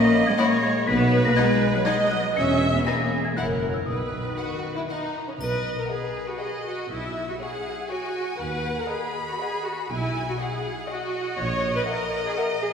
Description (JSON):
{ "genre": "cinematic, playful, whimsical film cue", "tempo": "120 BPM", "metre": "3/4", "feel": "straight", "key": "B major", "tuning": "A4 = 437 Hz", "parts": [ { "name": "small celesta", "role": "melody", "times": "0.0-4.8 s", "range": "D#6 to C#7", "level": "-28 LUFS", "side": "left 2 dB", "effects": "none" }, { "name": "rich chamber viola section", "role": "accompaniment", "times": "0.0-12.7 s", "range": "E4 to E5", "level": "-27 LUFS", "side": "right 1 dB", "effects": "none" }, { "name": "dark French horn section", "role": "sustained chords", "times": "0.0-4.9 s", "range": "D#3 to C#4", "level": "-27 LUFS", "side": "left 2 dB", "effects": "none" }, { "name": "rich studio cello section", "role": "bass", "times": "0.0-11.8 s", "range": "A#2 to C#4", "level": "-28 LUFS", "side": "left 1 dB", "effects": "none" }, { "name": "rich chamber violin section", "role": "melody", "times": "0.4-12.7 s", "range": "B4 to B5", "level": "-34 LUFS", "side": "left 2 dB", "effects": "none" }, { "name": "rich chamber violin section", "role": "second line", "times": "0.4-12.7 s", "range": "C#4 to F#5", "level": "-34 LUFS", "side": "left 2 dB", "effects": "none" }, { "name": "mellow tuba", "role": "bass", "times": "0.9-11.8 s", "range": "E1 to D#2", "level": "-33 LUFS", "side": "right 1 dB", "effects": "none" }, { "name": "warm chamber double bass section", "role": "bass", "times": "0.9-11.8 s", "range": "E1 to D#2", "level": "-31 LUFS", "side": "equal", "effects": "none" }, { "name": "triangle", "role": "percussion", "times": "5.4-6.4 s", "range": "none", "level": "-46 LUFS", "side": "left 3 dB", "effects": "none" } ], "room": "wet church reverb, RT60 3.0 s", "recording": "recorded in a church or concert hall", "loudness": "-22 LUFS", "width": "side -7 dB against mid", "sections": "0.0-5.4 A section; 5.4-12.7 B section", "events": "none", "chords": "0.0 F#/A# (rootless); 0.9 B; 2.4 E; 3.4 F#7; 3.9 B; 6.9 F#5/B; 8.4 B/D#; 9.9 B; 11.4 F#7/A#" }